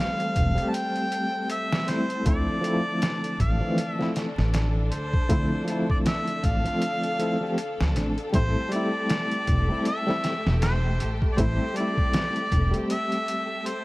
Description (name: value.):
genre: trip hop.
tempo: 79 BPM.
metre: 4/4.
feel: swing 58% on 16ths.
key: A minor.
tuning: A4 = 438 Hz.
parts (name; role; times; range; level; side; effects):
mellow harmonica; melody; 0.0-13.8 s; C5 to A5; -29 LUFS; equal; vintage 12-bit sampler grit, tape echo.
barky reed electric piano; accompaniment; 0.0-13.8 s; E3 to G4; -28 LUFS; equal; overdrive, fast tremolo.
rich studio string section; sustained chords; 0.0-13.8 s; D3 to A4; -34 LUFS; left 1 dB; vintage 12-bit sampler grit.
trip hop sampler-style drum kit; drums; 0.2-13.8 s; hi-hat, kick drum, snare drum; -27 LUFS; equal; overdrive, studio reverb.
upright bass; bass; 0.4-12.7 s; E1 to D2; -25 LUFS; equal; none.
room: little or no reverb.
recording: vinyl crackle.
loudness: -23 LUFS.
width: side -20 dB against mid.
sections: 0.0-13.8 A section.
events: none.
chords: 0.0 Am7; 2.3 Dm7; 8.3 Am7.